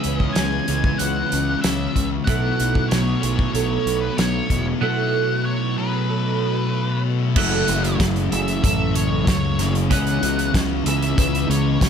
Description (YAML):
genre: rock, shoegaze and dream pop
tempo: 94 BPM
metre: 4/4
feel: straight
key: unclear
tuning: A4 = 440 Hz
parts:
  - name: octave-fuzz lead guitar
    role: melody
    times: 0.0-11.9 s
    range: B4 to G#5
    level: -27 LUFS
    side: left 1 dB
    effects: distortion, slapback echo
  - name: fingerpicked twelve-string acoustic guitar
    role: arpeggios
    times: 0.0-11.9 s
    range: F#4 to C#5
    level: -30 LUFS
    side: right 10 dB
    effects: analog chorus, slapback echo
  - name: thick fuzz guitar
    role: riff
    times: 0.0-11.9 s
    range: F#2 to C#4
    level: -24 LUFS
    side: left 10 dB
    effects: distortion, ensemble chorus
  - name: twelve-string electric guitar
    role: riff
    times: 0.0-11.9 s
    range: F#2 to G#4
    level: -25 LUFS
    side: right 9 dB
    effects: reverse reverb
  - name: fuzz fingered electric bass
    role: bass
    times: 0.0-11.9 s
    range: E1 to C#2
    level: -25 LUFS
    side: left 1 dB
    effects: overdrive
  - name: loose indie drum kit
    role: drums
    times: 0.0-11.9 s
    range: crash cymbal, hi-hat, kick drum, snare drum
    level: -22 LUFS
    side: equal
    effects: none
room: studio ambience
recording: none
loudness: -18 LUFS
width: side -7 dB against mid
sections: 0.0-7.4 A section; 7.4-11.9 B section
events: none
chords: 0.0 C#m7; 2.3 B7sus4; 7.4 F#m7; 9.9 C#m7